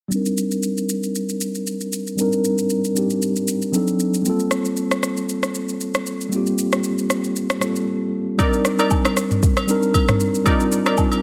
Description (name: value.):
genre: amapiano.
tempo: 116 BPM.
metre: 4/4.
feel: swing 55% on 16ths.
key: C dorian.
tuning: A4 = 438 Hz.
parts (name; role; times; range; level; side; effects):
mellow tine electric piano; accompaniment; 0.1-11.2 s; F#3 to Bb4; -22 LUFS; equal; low-pass filter.
afro-pop drum kit; drums; 0.1-11.2 s; kick drum, rim click, shaker, toms; -24 LUFS; equal; none.
glassy wavetable pluck; stabs; 8.4-10.9 s; Eb4 to D5; -26 LUFS; equal; chorus, tape echo.
agogo bells and woodblock; percussion; 8.4-11.2 s; none; -29 LUFS; equal; none.
room: moderate lush hall reverb, RT60 2.0 s.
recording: none.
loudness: -21 LUFS.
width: mono.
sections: 0.1-8.4 A section; 8.4-11.2 B section.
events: filter sweep on tine electric piano 0.1-8.4; drums muted 7.9-8.4.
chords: 0.1 Cm9; 3.7 D7b9; 4.3 Gm11; 8.4 Cm9.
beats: | 0.12 0.63 1.15 1.67 | 2.18 2.70 3.22 3.74 | 4.25 4.77 5.29 5.80 | 6.32 6.84 7.36 7.87 | 8.39 8.91 9.43 9.94 | 10.46 10.98.